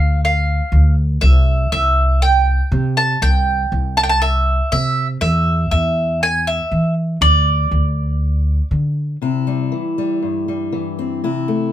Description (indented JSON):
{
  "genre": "indie folk with a building arrangement",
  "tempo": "120 BPM",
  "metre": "4/4",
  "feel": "straight",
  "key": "unclear",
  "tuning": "A4 = 440 Hz",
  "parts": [
    { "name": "mandolin", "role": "melody", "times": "0.0-8.7 s", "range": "D5 to A5", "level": "-18 LUFS", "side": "right 1 dB", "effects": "none" },
    { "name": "upright bass", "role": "bass", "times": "0.0-9.2 s", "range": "C2 to E3", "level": "-16 LUFS", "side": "equal", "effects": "none" },
    { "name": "fingerpicked steel-string acoustic guitar", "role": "accompaniment", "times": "9.2-11.7 s", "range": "G2 to E4", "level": "-18 LUFS", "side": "left 3 dB", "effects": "none" }
  ],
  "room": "light reverb",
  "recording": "band playing live in one room",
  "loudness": "-15 LUFS",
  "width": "side -11 dB against mid",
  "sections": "0.0-9.2 A section; 9.2-11.7 B section",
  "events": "none",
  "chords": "0.0 Dm; 1.2 C; 5.2 N.C.; 9.2 C"
}